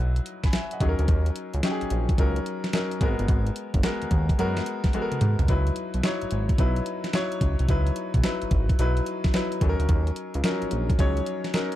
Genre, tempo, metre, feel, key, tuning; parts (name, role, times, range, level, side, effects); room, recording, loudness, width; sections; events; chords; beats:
R&B, new jack swing; 109 BPM; 4/4; swing 66% on 16ths; C# dorian; A4 = 443 Hz
bright concert grand piano; accompaniment; 0.0-11.8 s; E#3 to B5; -28 LUFS; left 2 dB
fat analog bass; bass; 0.0-11.2 s; F#1 to G#2; -24 LUFS; equal
crisp 8-bit digital drum machine; drums; 0.2-11.8 s; hi-hat, kick drum, snare drum, toms; -25 LUFS; equal
digital ambience; dark, warm production; -22 LUFS; side -14 dB against mid
0.0-11.8 A section
drum fill 4.9-5.5
0.0 C#m11 (rootless); 0.8 D#m7; 3.0 G#m9; 5.5 C#m11; 9.6 D#m7
0.53 | 1.08 1.63 2.18 2.73 | 3.28 3.83 4.38 4.93 | 5.49 6.04 6.59 7.14 | 7.69 8.24 8.79 9.34 | 9.89 10.44 10.99 11.54